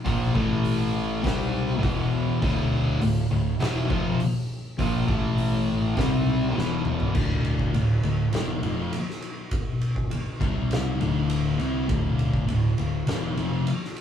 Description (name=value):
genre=stoner and doom metal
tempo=101 BPM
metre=4/4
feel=straight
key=D minor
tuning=A4 = 440 Hz
part: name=distorted electric guitar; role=riff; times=0.0-7.1 s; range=D2 to C4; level=-29 LUFS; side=right 1 dB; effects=overdrive
part: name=thick fuzz guitar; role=riff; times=0.1-13.7 s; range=D2 to C4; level=-26 LUFS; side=left 4 dB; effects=distortion
part: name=thick fuzz guitar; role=riff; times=0.1-13.7 s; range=D2 to C4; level=-30 LUFS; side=right 5 dB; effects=distortion
part: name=fuzz fingered electric bass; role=bass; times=0.1-13.6 s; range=D1 to C2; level=-31 LUFS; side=equal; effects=overdrive
part: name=oversized low-tuned drum kit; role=drums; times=0.1-14.0 s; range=crash cymbal, hi-hat, kick drum, ride cymbal, snare drum, toms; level=-28 LUFS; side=equal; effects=none
room=moderate large studio reverb, RT60 1.3 s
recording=band playing live in one room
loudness=-22 LUFS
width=side -9 dB against mid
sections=0.0-7.1 A section; 7.1-14.0 B section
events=drum fill 6.6-7.1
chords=0.3 A5; 1.2 C5; 1.8 E5; 2.4 Dm; 5.1 A5; 6.0 C5; 6.6 E5; 7.1 Dm; 10.4 C5; 11.0 Dm